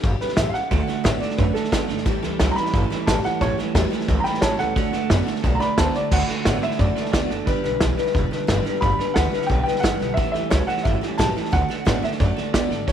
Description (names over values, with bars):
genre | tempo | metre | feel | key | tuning
rockabilly | 178 BPM | 4/4 | straight | D major | A4 = 438 Hz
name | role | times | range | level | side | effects
picked steel-string acoustic guitar | accompaniment | 0.0-12.9 s | A2 to B4 | -28 LUFS | left 13 dB | none
upright bass | bass | 0.0-12.9 s | E1 to A2 | -24 LUFS | equal | none
vintage drum kit | drums | 0.0-12.9 s | crash cymbal, hi-hat, kick drum, snare drum | -23 LUFS | equal | none
dark upright piano | melody | 0.2-12.9 s | A4 to B5 | -26 LUFS | right 1 dB | none
electric guitar through a small old amp | riff | 0.7-12.9 s | G2 to B3 | -26 LUFS | right 13 dB | lush chorus
room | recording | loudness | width
light reverb, small room ambience | 1960s-style stereo with parts hard left and right | -19 LUFS | side -9 dB against mid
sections
0.0-6.1 A section; 6.1-12.9 B section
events
upright piano solo 0.0-6.1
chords
0.0 A7; 0.7 D; 2.1 A7; 4.8 D; 7.5 G; 10.2 A7; 11.5 D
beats
0.04 0.38 | 0.71 1.05 1.39 1.73 | 2.06 2.40 2.74 3.08 | 3.41 3.75 4.09 4.43 | 4.76 5.10 5.44 5.78 | 6.12 6.46 6.79 7.13 | 7.47 7.81 8.14 8.48 | 8.82 9.16 9.50 9.84 | 10.17 10.51 10.85 11.19 | 11.53 11.86 12.20 12.54 | 12.88